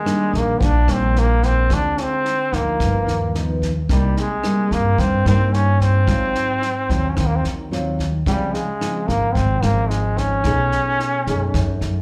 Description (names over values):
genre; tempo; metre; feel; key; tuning
bossa nova; 110 BPM; 4/4; straight; unclear; A4 = 441 Hz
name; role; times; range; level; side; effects
brilliant trombone; melody; 0.0-11.8 s; G3 to D4; -24 LUFS; equal; slapback echo
nylon-string guitar; accompaniment; 0.0-12.0 s; F#2 to G#4; -26 LUFS; equal; slapback echo
compact cocktail drum kit; drums; 0.1-11.9 s; kick drum, rim click, snare drum; -28 LUFS; equal; none
upright bass; bass; 0.3-12.0 s; G1 to G2; -22 LUFS; equal; none
room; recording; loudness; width
little or no reverb; live gig heard through the venue's PA, club reverb; -19 LUFS; mono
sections
0.0-12.0 A section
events
none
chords
0.0 Ebmaj7; 1.7 Dm7b5; 2.8 G7alt; 3.9 Cm7; 6.1 Ab6; 8.3 Dbmaj7; 10.4 B13